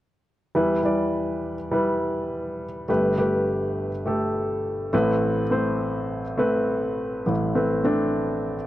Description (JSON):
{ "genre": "pop", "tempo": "103 BPM", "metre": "4/4", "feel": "swing 56% on 16ths", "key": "A minor", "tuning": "A4 = 440 Hz", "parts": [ { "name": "warm grand piano", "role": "accompaniment", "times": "0.5-8.7 s", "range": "G1 to D5", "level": "-22 LUFS", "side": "equal", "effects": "none" } ], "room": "moderate plate reverb, RT60 3.4 s", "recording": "worn, warbling old tape, cassette tape, warbly pitch drift", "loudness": "-22 LUFS", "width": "side -14 dB against mid", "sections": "0.6-8.7 A section", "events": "none", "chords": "0.6 Em; 2.9 Gadd9; 4.9 Amadd9" }